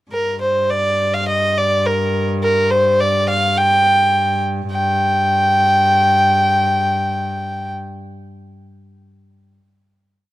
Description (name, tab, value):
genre	medieval dance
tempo	105 BPM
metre	2/4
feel	straight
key	G minor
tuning	A4 = 440 Hz
part	rich fiddle	melody	0.1-7.7 s	Bb4 to G5	-15 LUFS	equal	none
part	clear viola da gamba	drone	0.1-7.8 s	G2	-23 LUFS	left 1 dB	stereo widening
room	little or no reverb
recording	dry, close 1970s-style studio recording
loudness	-14 LUFS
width	side -16 dB against mid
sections	0.1-4.7 A section; 4.7-7.0 final note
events	none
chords	none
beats	| 0.10 0.68 | 1.27 1.85 | 2.42 3.00 | 3.57 4.14 | 4.71 5.28 | 5.84 6.40